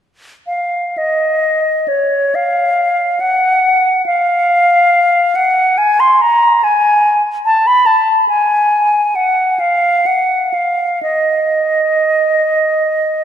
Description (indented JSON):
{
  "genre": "classical, free, expressive piece for unaccompanied flute",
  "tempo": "60-74 BPM",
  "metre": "4/4",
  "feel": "rubato",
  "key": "unclear",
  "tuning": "A4 = 441 Hz",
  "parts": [
    { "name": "concert flute", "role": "solo", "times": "0.5-13.2 s", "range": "Db5 to C6", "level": "-11 LUFS", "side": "equal", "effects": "none" }
  ],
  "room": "wet church reverb, RT60 2.7 s",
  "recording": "lossy compression artefacts",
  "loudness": "-11 LUFS",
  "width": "side -9 dB against mid",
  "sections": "0.5-13.2 A section",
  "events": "none",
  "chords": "none"
}